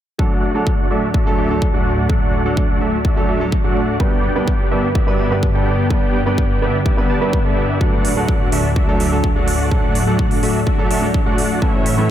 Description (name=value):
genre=EDM, festival progressive house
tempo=126 BPM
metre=4/4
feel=straight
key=D major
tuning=A4 = 435 Hz
part: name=warm grand piano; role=accompaniment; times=0.2-12.1 s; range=G2 to B4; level=-21 LUFS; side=right 2 dB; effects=sidechain pumping, analog delay
part: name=lush unison pad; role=sustained chords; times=0.2-12.1 s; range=D2 to C#4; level=-22 LUFS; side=left 1 dB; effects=chorus, sidechain pumping
part: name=dense compressed supersaw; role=riff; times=0.2-12.1 s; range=A3 to A5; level=-21 LUFS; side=equal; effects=sidechain pumping, low-pass filter, analog delay
part: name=electronic kick drum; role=drums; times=0.2-11.7 s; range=none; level=-18 LUFS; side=equal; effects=none
part: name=electronic hi-hat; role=drums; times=8.0-12.0 s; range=none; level=-27 LUFS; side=right 4 dB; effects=none
room=moderate huge ambient reverb, RT60 8.1 s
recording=dreamy mix soaked in reverb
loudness=-14 LUFS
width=side -11 dB against mid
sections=0.2-12.1 A section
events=filter sweep on analog synth pad 0.2-12.1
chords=0.2 D; 4.0 G; 7.8 D